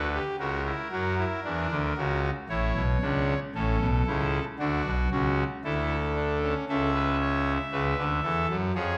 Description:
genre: classical, baroque-style 3-part fugue for pipe organ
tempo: 57 BPM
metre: 4/4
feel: straight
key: unclear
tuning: A4 = 441 Hz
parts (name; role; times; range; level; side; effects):
- pipe organ, trumpet; solo; 0.0-9.0 s; A1 to E5; -28 LUFS; equal; none
room: wet recital hall reverb, RT60 1.5 s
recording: dark, warm production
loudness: -28 LUFS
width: mono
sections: 0.0-9.0 A section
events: none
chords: 0.4 F#7b13/C#; 2.5 A; 4.6 D; 6.7 A/C#

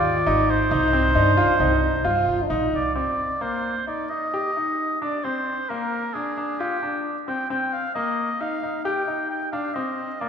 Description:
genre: contemporary instrumental, chamber music in an uneven meter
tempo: 132 BPM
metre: 5/4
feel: straight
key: C minor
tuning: A4 = 440 Hz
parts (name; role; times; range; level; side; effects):
- warm oboe; melody; 0.0-10.3 s; G4 to G5; -25 LUFS; right 2 dB; none
- clear French horn; second line; 0.0-3.0 s; C4 to F4; -26 LUFS; left 1 dB; none
- bright baby grand piano; arpeggios; 0.0-10.3 s; Bb3 to G4; -26 LUFS; left 2 dB; none
- upright bass; bass; 0.0-2.9 s; G1 to G2; -24 LUFS; right 1 dB; none
room: wet church reverb, RT60 2.7 s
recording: recorded in a church or concert hall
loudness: -21 LUFS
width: side -7 dB against mid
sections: 0.0-3.0 A section; 3.0-10.3 B section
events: none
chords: 0.0 Ab; 0.7 Cm; 3.0 Cm7; 5.2 Bb13; 7.5 Cm7; 9.8 Bbsus2

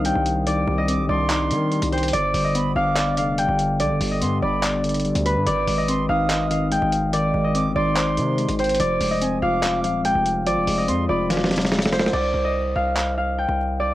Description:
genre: hip hop, trap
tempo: 144 BPM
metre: 4/4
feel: half-time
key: C harmonic minor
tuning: A4 = 440 Hz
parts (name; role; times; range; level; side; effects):
- concert harp; melody; 0.0-13.9 s; B4 to G5; -23 LUFS; equal; analog delay
- mellow tine electric piano; accompaniment; 0.0-12.2 s; D3 to F5; -24 LUFS; left 2 dB; analog chorus, cassette tape
- distorted 808-style bass; bass; 0.0-13.9 s; Eb1 to Eb3; -27 LUFS; equal; distortion
- dusty soul sampler-style drum kit; drums; 0.0-13.1 s; crash cymbal, handclaps, hi-hat, snare drum; -26 LUFS; equal; vintage 12-bit sampler grit, cassette tape
- reedy concert flute; second line; 0.9-11.3 s; G5 to Eb6; -31 LUFS; right 5 dB; cassette tape, analog delay
room: light reverb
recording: home recording on cassette, vinyl crackle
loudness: -19 LUFS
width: side -15 dB against mid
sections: 0.0-12.1 A section; 12.1-13.9 B section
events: drum fill 11.3-12.1; hi-hats muted 12.1-13.9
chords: 0.0 Cmadd9; 2.1 G; 5.5 Ab; 8.8 Fm; 12.1 Cmadd9

